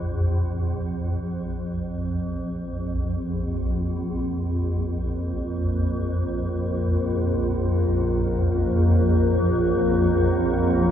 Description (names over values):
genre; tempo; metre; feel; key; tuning
dark ambient drone; free time; none; none; Bb minor; A4 = 441 Hz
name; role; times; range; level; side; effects
swarming drone; drone; 0.0-10.9 s; Bb1 to F2; -23 LUFS; equal; built-in reverb
deep dark ambient pad; sustained chords; 3.7-10.9 s; Bb3 to Db5; -25 LUFS; left 1 dB; chorus, built-in reverb, shimmer reverb
room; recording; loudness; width
wet huge ambient reverb, RT60 8.3 s; none; -21 LUFS; side -9 dB against mid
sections
0.0-1.6 A section; 1.6-10.9 B section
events
none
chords
0.0 Bb5; 1.6 Bbm